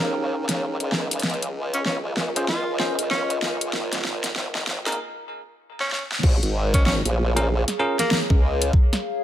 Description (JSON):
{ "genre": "glitch hop", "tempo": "96 BPM", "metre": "4/4", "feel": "swing 62% on 16ths", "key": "Bb minor", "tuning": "A4 = 440 Hz", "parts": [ { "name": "bell-like tine electric piano", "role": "stabs", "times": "0.0-8.0 s", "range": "Bb3 to C5", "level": "-28 LUFS", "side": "equal", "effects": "sidechain pumping, tape echo" }, { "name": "formant-sweep wobble bass", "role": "bass", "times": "0.0-8.7 s", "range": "Ab1 to Eb2", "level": "-26 LUFS", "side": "equal", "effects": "chorus, tube saturation, high-pass filter" }, { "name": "warbly tape-like pad", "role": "texture", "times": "0.0-9.2 s", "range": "Eb4 to F5", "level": "-31 LUFS", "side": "right 1 dB", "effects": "chorus, built-in reverb, sidechain pumping" }, { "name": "dubstep drum kit", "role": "drums", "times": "0.5-9.0 s", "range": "crash cymbal, hi-hat, snare drum", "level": "-26 LUFS", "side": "equal", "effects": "overdrive" }, { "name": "warm tenor saxophone", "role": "melody", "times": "1.7-8.2 s", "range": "Bb3 to F4", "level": "-29 LUFS", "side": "equal", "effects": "tape echo" }, { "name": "electronic kick drum", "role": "drums", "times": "6.2-8.9 s", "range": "none", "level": "-18 LUFS", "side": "equal", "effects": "overdrive" } ], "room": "little or no reverb", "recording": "high-pass filter", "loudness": "-20 LUFS", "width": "side -11 dB against mid", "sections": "0.0-6.2 A section; 6.2-9.2 B section", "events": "build-up 0.0-6.2; drum fill 0.0-5.0, 5.8-6.2; filter sweep 0.0-6.2; break 5.0-6.2; drop 6.2-9.2", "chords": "0.0 Eb7sus4; 1.2 Db; 3.7 Absus2; 6.2 Bbm7; 8.7 Eb7sus4 (rootless)" }